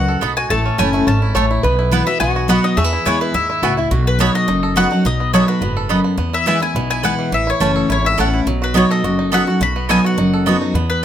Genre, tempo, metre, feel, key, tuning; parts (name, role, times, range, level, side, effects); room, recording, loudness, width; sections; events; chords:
bluegrass; 211 BPM; 4/4; straight; A4 = 440 Hz
bluegrass banjo; melody; 0.0-11.0 s; E3 to A4; -24 LUFS; right 4 dB; slapback echo
mandolin; melody; 0.0-11.0 s; B4 to B5; -20 LUFS; left 4 dB
lap resonator guitar; second line; 0.0-3.9 s; E4 to C#5; -22 LUFS; left 2 dB
picked steel-string acoustic guitar; accompaniment; 0.0-11.0 s; E2 to F#4; -18 LUFS; equal
upright bass; bass; 0.0-11.0 s; F#1 to E2; -20 LUFS; equal
mandolin; stabs; 0.2-10.6 s; A3 to B5; -20 LUFS; right 5 dB
light reverb; close, detailed microphones; -14 LUFS; side -10 dB against mid
0.0-3.9 A section; 3.9-11.0 B section
0.0 B; 0.5 A; 1.6 Bsus4; 2.2 B; 2.8 E; 3.9 B; 6.2 E; 7.3 A; 8.5 B